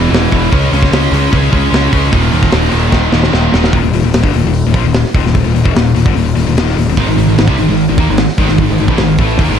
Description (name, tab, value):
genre	heavy metal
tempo	149 BPM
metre	4/4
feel	straight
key	unclear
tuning	A4 = 440 Hz
part	scooped high-gain guitar	riff	0.0-9.6 s	Eb2 to Db4	-15 LUFS	left 11 dB	distortion
part	scooped high-gain guitar	riff	0.0-3.7, 7.0-9.6 s	Eb2 to Db4	-15 LUFS	right 12 dB	distortion
part	fuzz picked electric bass	bass	0.0-9.6 s	Eb1 to Eb2	-14 LUFS	right 1 dB	overdrive
part	tight metal drum kit	drums	0.1-9.5 s	hi-hat, kick drum, snare drum	-15 LUFS	equal	none
room	little or no reverb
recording	dark, warm production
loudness	-9 LUFS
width	side -8 dB against mid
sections	0.0-3.7 A section; 3.7-9.6 B section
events	drum fill 2.9-3.7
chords	0.0 E5; 0.5 Db5; 2.1 Eb5; 7.0 Ab5